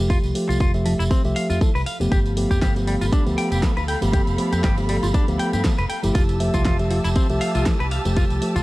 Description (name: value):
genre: nu-disco, nu disco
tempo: 119 BPM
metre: 4/4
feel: swing 55% on 16ths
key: G mixolydian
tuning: A4 = 440 Hz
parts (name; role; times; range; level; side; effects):
- tine electric piano; accompaniment; 0.0-8.6 s; F3 to E5; -24 LUFS; equal; vintage 12-bit sampler grit, sidechain pumping, tape echo
- fingered electric bass with an envelope filter; bass; 0.0-8.6 s; F1 to G2; -23 LUFS; equal; tube saturation
- clean electric guitar; riff; 0.1-8.6 s; F3 to G5; -28 LUFS; left 1 dB; wide subtle chorus, vintage 12-bit sampler grit, tape echo
- electronic kick drum; drums; 0.1-8.6 s; none; -20 LUFS; equal; none
- tambourine; percussion; 0.1-8.6 s; none; -38 LUFS; right 3 dB; none
- pop drum kit; drums; 0.4-8.6 s; hi-hat, snare drum; -31 LUFS; equal; none
- rich symphonic string section; sustained chords; 2.1-8.6 s; G4 to E6; -31 LUFS; right 1 dB; sidechain pumping
room: digital ambience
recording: none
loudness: -18 LUFS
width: side -19 dB against mid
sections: 0.0-8.6 A section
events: none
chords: 0.0 Fmaj9; 2.1 G9; 6.2 Fmaj9